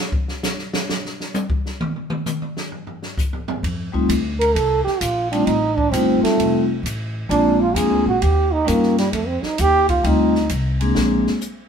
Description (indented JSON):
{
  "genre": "jazz, small-group swing and bop",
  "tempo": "131 BPM",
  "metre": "4/4",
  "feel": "swing 67% on 8ths",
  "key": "unclear",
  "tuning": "A4 = 439 Hz",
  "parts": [
    { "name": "open jazz drum kit", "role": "drums", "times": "0.1-11.6 s", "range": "hi-hat, kick drum, ride cymbal, snare drum, toms", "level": "-25 LUFS", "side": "equal", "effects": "none" },
    { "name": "upright bass", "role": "bass", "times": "3.6-11.3 s", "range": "F1 to G2", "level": "-23 LUFS", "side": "equal", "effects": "none" },
    { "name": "vibraphone with soft mallets", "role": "accompaniment", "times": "3.9-11.3 s", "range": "G3 to Ab4", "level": "-19 LUFS", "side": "left 2 dB", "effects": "none" },
    { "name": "breathy trombone", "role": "second line", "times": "4.4-10.5 s", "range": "G3 to Bb4", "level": "-19 LUFS", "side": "right 3 dB", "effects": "none" }
  ],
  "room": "moderate stone room reverb, RT60 1.1 s",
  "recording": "band playing live in one room",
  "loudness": "-17 LUFS",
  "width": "side -7 dB against mid",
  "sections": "0.0-11.0 A section",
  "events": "trombone solo 0.0-11.7; drum solo 0.0-3.6",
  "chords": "0.0 N.C.; 3.6 F7; 7.3 Bb7; 8.2 Eb7; 9.1 F7; 11.0 Bb7",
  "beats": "0.43 0.89 1.34 | 1.80 2.26 2.72 3.18 | 3.64 4.09 4.55 5.01 | 5.47 5.93 6.38 6.84 | 7.30 7.76 8.21 8.67 | 9.13 9.58 10.04 10.50 | 10.96 11.41"
}